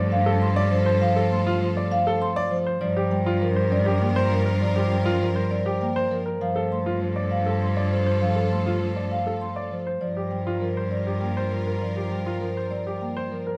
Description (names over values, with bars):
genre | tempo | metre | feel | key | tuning
classical, minimalist pattern music | 100 BPM | 3/4 | straight | G minor | A4 = 440 Hz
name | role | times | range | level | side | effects
Celtic harp | accompaniment | 0.0-13.6 s | F3 to D4 | -30 LUFS | equal | none
rich symphonic string section | sustained chords | 0.0-13.4 s | F4 to Bb4 | -39 LUFS | equal | none
warm grand piano | arpeggios | 0.0-13.6 s | F4 to D5 | -31 LUFS | equal | none
rich cello | bass | 0.0-13.5 s | G2 | -28 LUFS | equal | none
marimba with soft mallets | melody | 0.1-13.5 s | Bb4 to C6 | -32 LUFS | equal | none
room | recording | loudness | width
light reverb | close, detailed microphones | -24 LUFS | mono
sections
0.0-13.6 A section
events
none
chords
0.0 F/G; 2.8 Gm7; 6.4 F/G; 10.0 Gm7